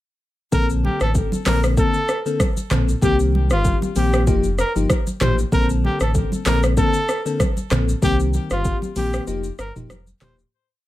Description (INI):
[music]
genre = afrobeats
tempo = 96 BPM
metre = 4/4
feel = swing 55% on 16ths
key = Bb major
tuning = A4 = 440 Hz
[part]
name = clear trumpet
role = melody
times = 0.5-10.4 s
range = F4 to C5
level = -25 LUFS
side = equal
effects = ping-pong delay
[part]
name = crystalline FM electric piano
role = accompaniment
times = 0.5-10.4 s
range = D3 to A4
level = -23 LUFS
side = left 3 dB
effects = chorus
[part]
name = sub bass with octave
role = bass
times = 0.5-10.4 s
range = Eb1 to C2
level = -21 LUFS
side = equal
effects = none
[part]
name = afro-pop drum kit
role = drums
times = 0.5-10.5 s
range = handclaps, hi-hat, kick drum, rim click, shaker, toms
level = -22 LUFS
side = equal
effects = overdrive
[part]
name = congas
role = percussion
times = 0.5-10.4 s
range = none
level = -28 LUFS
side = right 2 dB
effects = none
[sound]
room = light reverb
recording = none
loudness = -17 LUFS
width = side -15 dB against mid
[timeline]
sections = 0.5-10.5 chorus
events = fade-out 8.0-10.5; break 9.3-10.5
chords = 0.5 Bbmaj9; 3.0 Cm7; 4.3 F9sus4; 5.5 Bbmaj9; 8.0 Cm7; 9.3 F9sus4